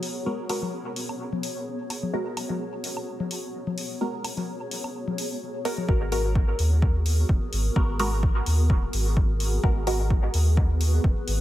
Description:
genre	dub techno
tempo	128 BPM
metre	4/4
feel	swing 55% on 16ths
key	G# minor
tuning	A4 = 440 Hz
part	granular cloud pad	sustained chords	0.0-11.4 s	B3 to C#5	-34 LUFS	equal	built-in reverb, sidechain pumping
part	electronic hi-hat	drums	0.0-11.4 s	none	-34 LUFS	left 1 dB	none
part	filtered dub chord stab	stabs	0.3-10.0 s	G#3 to A#4	-32 LUFS	equal	phaser, sidechain pumping, dub echo
part	woodblock and congas	percussion	0.5-5.9 s	none	-34 LUFS	left 4 dB	sidechain pumping on perc, dub echo
part	soft dub sub bass	bass	5.9-11.4 s	D#1 to D#2	-23 LUFS	equal	tube saturation, sidechain pumping
part	electronic kick drum	drums	5.9-11.1 s	none	-23 LUFS	equal	none
room	little or no reverb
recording	none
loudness	-23 LUFS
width	side -14 dB against mid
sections	0.0-5.9 A section; 5.9-11.4 B section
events	none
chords	0.0 G#m9

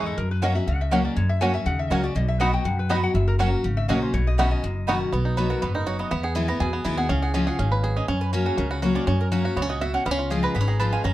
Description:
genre	bluegrass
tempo	243 BPM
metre	4/4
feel	straight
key	B major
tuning	A4 = 441 Hz
part	lap resonator guitar	second line	0.0-5.0 s	A4 to G#5	-30 LUFS	left 4 dB	none
part	picked steel-string acoustic guitar	accompaniment	0.0-11.1 s	E2 to F#4	-26 LUFS	left 2 dB	none
part	mandolin	stabs	0.0-11.1 s	A#3 to C#6	-29 LUFS	right 3 dB	none
part	upright bass	bass	0.0-11.1 s	F#1 to F#2	-24 LUFS	equal	none
part	bluegrass banjo	melody	0.4-11.1 s	B3 to B4	-28 LUFS	right 2 dB	none
room	light reverb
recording	dark, warm production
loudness	-21 LUFS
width	side -15 dB against mid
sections	0.0-5.1 A section; 5.1-11.1 A section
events	resonator guitar played with a steel bar solo 0.0-5.1; mandolin solo 5.1-11.1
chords	0.2 F#; 2.2 B; 3.1 F#; 4.1 Badd9; 5.1 B; 6.1 E; 7.1 C#; 8.1 F#; 10.1 C#

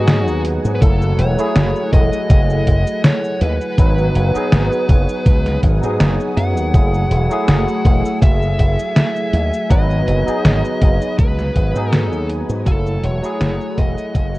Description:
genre	vaporwave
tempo	81 BPM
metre	4/4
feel	swing 54% on 16ths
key	F# dorian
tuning	A4 = 441 Hz
part	fuzz lead guitar	melody	0.0-14.4 s	F#4 to F#5	-24 LUFS	equal	distortion, tape echo
part	barky tine electric piano	accompaniment	0.0-14.4 s	F#3 to B4	-21 LUFS	equal	ensemble chorus
part	soft string machine	sustained chords	0.0-14.4 s	A3 to E6	-30 LUFS	equal	ensemble chorus
part	slap bass with an envelope filter	bass	0.0-14.4 s	E1 to G#2	-18 LUFS	equal	tube saturation
part	detuned 8-bit digital drum machine	drums	0.1-14.4 s	cabasa, hi-hat, snare drum	-17 LUFS	equal	vintage 12-bit sampler grit, studio reverb
part	electronic kick drum	drums	0.8-14.3 s	none	-14 LUFS	equal	vintage 12-bit sampler grit, studio reverb
room	digital ambience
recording	dark, warm production, cassette tape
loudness	-13 LUFS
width	side -19 dB against mid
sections	0.0-14.4 A section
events	fade-out 10.7-14.4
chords	0.0 G#m7; 0.8 F#m9; 3.8 G#m7; 6.7 F#m9; 9.7 G#m7; 12.7 F#m9

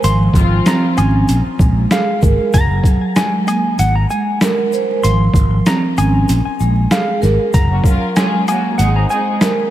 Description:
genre	hip hop, boom-bap hip-hop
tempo	96 BPM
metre	4/4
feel	swing 54% on 16ths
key	unclear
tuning	A4 = 441 Hz
part	mellow electric guitar	melody	0.0-9.4 s	F5 to C6	-21 LUFS	equal	high-pass filter, low-pass filter, ping-pong delay
part	vibraphone with soft mallets	accompaniment	0.0-9.7 s	F3 to C5	-17 LUFS	right 2 dB	high-pass filter, low-pass filter
part	fretless electric bass	bass	0.0-9.0 s	Gb1 to Bb1	-14 LUFS	equal	none
part	trip hop sampler-style drum kit	drums	0.0-9.6 s	hi-hat, kick drum, rim click, shaker, snare drum	-16 LUFS	equal	overdrive
part	egg shaker and woodblock	percussion	0.0-9.6 s	none	-30 LUFS	left 8 dB	none
part	muted studio string section	stabs	0.4-0.9, 7.7-9.4 s	Ab3 to Bb4	-24 LUFS	left 3 dB	high-pass filter, low-pass filter, ping-pong delay
room	light reverb, digital ambience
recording	vinyl crackle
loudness	-12 LUFS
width	side -13 dB against mid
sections	0.0-9.7 A section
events	kick muted 6.3-7.5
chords	0.0 Dbmaj7/Ab; 1.3 Fmadd11; 2.5 Gbadd9; 3.8 Abadd9; 5.0 Dbmaj7/Ab; 6.3 Fmadd11; 7.5 Gbmaj9; 8.8 Abadd9

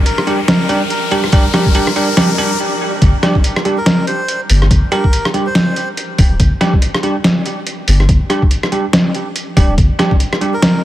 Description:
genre	deep dubstep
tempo	142 BPM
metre	4/4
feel	swing 59% on 16ths, half-time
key	G minor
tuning	A4 = 440 Hz
part	riser	sound effects	0.0-2.6 s	none	-22 LUFS	left 4 dB	none
part	melodica	melody	0.1-5.9, 10.5-10.8 s	Bb4 to C5	-22 LUFS	equal	dub echo
part	trip hop sampler-style drum kit	drums	0.1-10.7 s	hi-hat, rim click, snare drum	-16 LUFS	equal	overdrive
part	bell-like tine electric piano	stabs	0.3-10.5 s	G3 to G4	-18 LUFS	right 2 dB	analog chorus, dub echo
part	electronic kick drum	drums	1.3-10.2 s	none	-12 LUFS	equal	overdrive
part	soft dub sub bass	bass	3.0-9.9 s	D1 to G1	-12 LUFS	equal	none
room	light reverb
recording	heavily compressed radio sound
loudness	-11 LUFS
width	side -14 dB against mid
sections	0.0-3.0 A section; 3.0-10.8 B section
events	build-up 0.0-3.0; riser 0.0-2.6; stop 2.6-3.0; drop 3.0-10.8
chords	0.0 G5

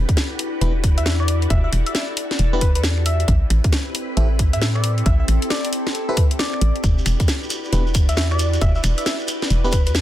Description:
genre	UK garage, two-step garage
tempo	135 BPM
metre	4/4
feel	swing 63% on 16ths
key	E minor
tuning	A4 = 440 Hz
part	soft string machine	sustained chords	0.0-10.0 s	C4 to B4	-32 LUFS	equal	phaser, ensemble chorus, sidechain pumping
part	hollow knocking FM bass	bass	0.0-10.0 s	E1 to A2	-18 LUFS	equal	none
part	warbly tape-like pad	texture	0.0-10.0 s	C4 to D5	-29 LUFS	left 1 dB	chorus, built-in reverb, sidechain pumping
part	electronic kick drum	drums	0.1-9.8 s	none	-18 LUFS	equal	studio reverb
part	garage drum kit	drums	0.1-10.0 s	finger snaps, hi-hat, snare drum	-24 LUFS	equal	studio reverb
part	FM electric piano	stabs	0.6-9.8 s	B3 to E5	-27 LUFS	equal	chorus, vintage 12-bit sampler grit, dub echo
part	soft struck synth lead	melody	1.0-9.9 s	B4 to E5	-29 LUFS	left 2 dB	chorus, dub echo
part	shekere	percussion	6.8-10.0 s	none	-31 LUFS	right 2 dB	none
room	little or no reverb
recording	dense, heavily limited modern master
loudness	-17 LUFS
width	side -13 dB against mid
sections	0.0-10.0 A section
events	kick drops out 6.4-6.8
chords	0.0 Em7; 3.3 Am7; 6.8 Em7

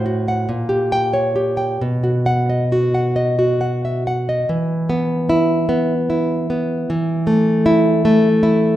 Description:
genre	romantic piece for solo classical guitar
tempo	44-53 BPM (dotted quarters)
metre	6/8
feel	rubato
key	E minor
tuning	A4 = 440 Hz
part	nylon-string guitar	solo	0.0-8.8 s	A2 to G5	-15 LUFS	equal	none
room	moderate recital hall reverb, RT60 1.4 s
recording	minimal, uncompressed stereo recording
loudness	-15 LUFS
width	side -13 dB against mid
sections	0.0-4.5 A section; 4.5-8.8 B section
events	none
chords	0.5 A#m6; 1.8 B; 4.5 E5; 6.9 Esus4

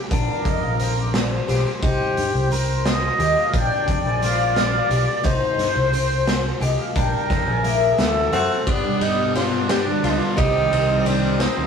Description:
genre	progressive instrumental, band music in an uneven meter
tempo	176 BPM (eighths)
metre	5/8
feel	straight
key	unclear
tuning	A4 = 443 Hz
part	warm flugelhorn	second line	0.1-11.7 s	B3 to Eb5	-24 LUFS	equal	none
part	fingerpicked twelve-string acoustic guitar	arpeggios	0.1-11.7 s	Bb3 to G4	-28 LUFS	left 4 dB	none
part	modern bright fingered electric bass	bass	0.1-11.7 s	Bb1 to G2	-24 LUFS	equal	none
part	raw garage drum kit	drums	0.1-11.6 s	hi-hat, kick drum, ride cymbal, snare drum	-24 LUFS	equal	none
part	chorused pulse-width pad	accompaniment	0.3-11.7 s	B2 to Ab5	-24 LUFS	left 2 dB	none
part	bright tenor saxophone	melody	8.3-11.7 s	C4 to G4	-23 LUFS	right 2 dB	none
room	wet studio reverb, RT60 0.7 s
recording	rough rehearsal-room recording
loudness	-18 LUFS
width	side -6 dB against mid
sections	0.0-8.7 A section; 8.7-11.7 B section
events	analog synth pad solo 0.0-8.7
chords	0.1 Bbadd9; 1.8 Cm; 3.5 Bbadd9; 5.2 Cm; 7.0 Bb; 8.0 D7; 8.7 G; 10.4 Cm

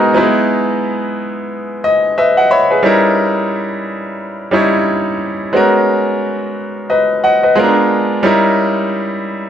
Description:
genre	R&B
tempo	89 BPM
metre	4/4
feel	swing 56% on 16ths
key	unclear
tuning	A4 = 445 Hz
part	bright grand piano	solo	0.0-9.5 s	F#3 to B5	-12 LUFS	equal	none
room	moderate studio reverb, RT60 1.0 s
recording	none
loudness	-12 LUFS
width	side -9 dB against mid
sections	0.0-2.8 A section; 2.8-9.5 B section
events	grand piano fill 1.5-2.8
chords	0.1 Emaj7; 2.8 D#7b9; 5.5 G#m11; 7.6 A#7b9; 8.2 D#7b9

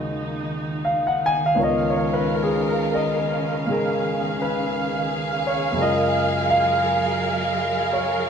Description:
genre	jazz ballad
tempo	57 BPM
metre	4/4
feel	swing 68% on 8ths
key	unclear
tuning	A4 = 437 Hz
part	warm grand piano	accompaniment	0.0-8.3 s	C#2 to G#5	-22 LUFS	left 1 dB	none
part	warm symphonic string section	sustained chords	0.0-8.3 s	D#3 to E#5	-24 LUFS	right 2 dB	none
room	wet stone room reverb, RT60 1.3 s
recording	band playing live in one room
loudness	-20 LUFS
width	side -7 dB against mid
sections	0.0-8.3 A section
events	none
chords	0.0 D#m9; 1.6 C#13; 5.8 F#maj9

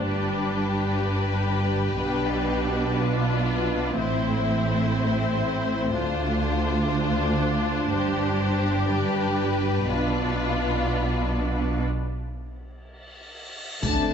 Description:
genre	cinematic, epic orchestral film score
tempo	free time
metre	none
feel	none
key	unclear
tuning	A4 = 439 Hz
part	clear symphonic viola section	accompaniment	0.0-14.1 s	A3 to D4	-29 LUFS	right 1 dB	none
part	clear symphonic violin section	melody	0.1-14.1 s	B4 to A5	-32 LUFS	left 6 dB	none
part	rich symphonic violin section	second line	0.1-14.1 s	E4 to C5	-30 LUFS	left 2 dB	none
part	rich symphonic cello section	bass	0.1-14.1 s	D2 to D3	-27 LUFS	right 1 dB	none
part	warm symphonic double bass section	bass	0.1-14.1 s	G1 to D2	-29 LUFS	right 3 dB	none
part	cymbal swell and impact	sound effects	13.0-14.1 s	none	-33 LUFS	left 1 dB	none
part	dark French horn section	sustained chords	13.8-14.1 s	C4 to D4	-27 LUFS	left 7 dB	none
part	warm trombone section	sustained chords	13.8-14.1 s	A3	-30 LUFS	right 6 dB	none
part	taiko ensemble	drums	13.8-14.1 s	none	-30 LUFS	equal	none
part	triangle	percussion	13.8-14.1 s	none	-39 LUFS	left 6 dB	none
room	moderate concert hall reverb, RT60 1.8 s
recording	nothing above 8.0 kHz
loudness	-22 LUFS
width	side -7 dB against mid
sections	0.0-13.8 A section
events	build-up 0.0-13.8; break 11.9-13.8; cymbal swell 13.0-13.8; impact 13.8-14.1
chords	0.1 G; 2.0 Bdim; 4.0 Am; 6.0 Dm7; 7.9 G; 9.9 Bdim; 11.9 N.C.

